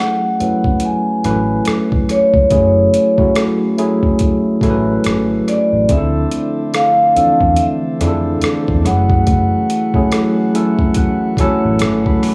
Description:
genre	R&B, neo-soul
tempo	71 BPM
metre	4/4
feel	swing 59% on 16ths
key	F# minor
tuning	A4 = 440 Hz
part	vibraphone with medium mallets	melody	0.0-10.1 s	C#5 to G#5	-19 LUFS	equal	tape echo
part	tine electric piano	accompaniment	0.0-12.3 s	E3 to B5	-18 LUFS	equal	none
part	vintage muted fingered electric bass	bass	0.4-12.2 s	F#1 to F2	-21 LUFS	equal	none
part	boom bap sampler-style drum kit	drums	0.4-12.3 s	hi-hat, kick drum, rim click	-21 LUFS	equal	none
part	chamber organ, sparkling flutes	sustained chords	5.9-12.3 s	D3 to F#4	-27 LUFS	equal	none
room	light reverb, digital ambience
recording	small room ambience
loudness	-15 LUFS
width	mono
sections	0.0-12.3 A section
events	tine electric piano fill 10.1-12.3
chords	0.0 F#m9; 5.9 Dm9; 8.8 F#m9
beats	0.82 1.67 | 2.51 3.36 4.20 5.05 | 5.89 6.74 7.58 8.43 | 9.27 10.12 10.96 11.81

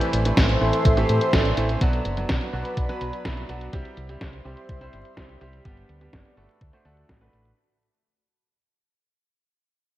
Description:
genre	italo disco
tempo	125 BPM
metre	4/4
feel	straight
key	unclear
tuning	A4 = 440 Hz
part	lush unison pad	sustained chords	0.0-7.6 s	F#4 to C6	-28 LUFS	equal	chorus
part	bright grand piano	stabs	0.0-7.5 s	E3 to C5	-29 LUFS	right 1 dB	low-pass filter, digital delay
part	clean 12-bit digital drum machine	drums	0.0-7.5 s	hi-hat, snare drum	-26 LUFS	equal	low-pass filter on hats, small room ambience, low-pass filter on toms, low-pass filter on snare, gated reverb
part	fingered electric bass with an envelope filter	bass	0.1-7.5 s	F#1 to A2	-26 LUFS	equal	tube saturation
part	electronic kick drum	drums	0.4-7.2 s	none	-24 LUFS	equal	small room ambience
room	moderate lush hall reverb, RT60 1.9 s, digital ambience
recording	bright 1980s-style digital production, vinyl crackle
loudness	-20 LUFS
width	side -14 dB against mid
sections	0.0-7.6 A section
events	fade-out 0.0-7.6; filter sweep on drum 0.0-7.6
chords	0.0 Am; 1.8 Bm; 3.7 C; 5.7 G; 6.6 D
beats	0.37 0.85 1.33 | 1.81 2.29 2.77 3.25 | 3.73 4.21 4.69 5.17 | 5.65 6.13 6.61 7.09

